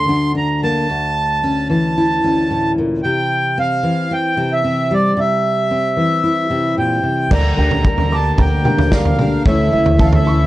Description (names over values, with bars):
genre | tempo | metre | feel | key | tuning
indie folk with a building arrangement | 112 BPM | 4/4 | straight | unclear | A4 = 439 Hz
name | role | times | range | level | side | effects
accordion | melody | 0.0-10.5 s | D5 to C6 | -18 LUFS | right 1 dB | none
fingerpicked steel-string acoustic guitar | accompaniment | 0.0-10.5 s | D2 to E4 | -18 LUFS | left 1 dB | none
picked plugged-in twelve-string acoustic guitar | accompaniment | 7.3-10.5 s | D3 to Bb4 | -22 LUFS | left 4 dB | none
dark upright piano | arpeggios | 7.3-10.5 s | C#5 to D6 | -25 LUFS | right 4 dB | none
upright bass | bass | 7.3-10.4 s | D2 | -18 LUFS | equal | none
natural country drum kit | drums | 7.3-10.2 s | crash cymbal, kick drum, snare drum, toms | -16 LUFS | equal | none
room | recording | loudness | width
light reverb | cassette tape | -14 LUFS | side -16 dB against mid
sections
0.0-7.3 A section; 7.3-10.5 B section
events
none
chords
0.0 Bbmaj9/D; 0.9 A/D; 3.0 C; 7.3 Gm/D; 9.5 A/D